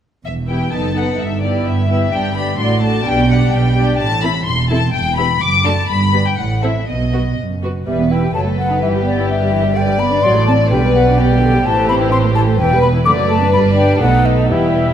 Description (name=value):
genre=quick classical-period movement for symphony orchestra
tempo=127 BPM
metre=2/4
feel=straight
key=E minor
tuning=A4 = 440 Hz
part: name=warm studio violin section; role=melody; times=0.3-14.9 s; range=B4 to D6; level=-21 LUFS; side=left 5 dB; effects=none
part: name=dark studio double bass section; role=bass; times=0.3-14.9 s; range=E1 to B1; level=-18 LUFS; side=right 1 dB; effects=none
part: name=warm studio cello section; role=bass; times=0.3-14.9 s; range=E2 to B2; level=-20 LUFS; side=right 4 dB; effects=none
part: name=warm studio violin section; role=second line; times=0.5-14.9 s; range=E4 to D5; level=-21 LUFS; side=left 3 dB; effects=none
part: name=warm studio viola section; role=accompaniment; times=0.5-14.9 s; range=D3 to G4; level=-21 LUFS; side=right 2 dB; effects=none
part: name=hollow concert flute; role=second line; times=7.9-14.9 s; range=D5 to D6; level=-18 LUFS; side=left 2 dB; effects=none
room=moderate scoring stage reverb, RT60 1.7 s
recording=none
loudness=-12 LUFS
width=side -9 dB against mid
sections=0.3-7.9 A section; 7.9-14.9 A section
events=none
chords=0.3 Em; 0.7 B7/F#; 1.2 Em/G; 2.1 G; 2.6 D7/A; 3.1 G/B; 4.0 Am; 4.9 Em; 5.4 D/F#; 5.9 G; 6.4 Am; 6.9 B; 7.9 Em; 8.3 B7/F#; 8.8 Em/G; 9.8 G; 10.2 D7/A; 10.7 G/B; 11.7 Am; 12.6 Em; 13.1 D/F#; 13.5 G; 14.0 B7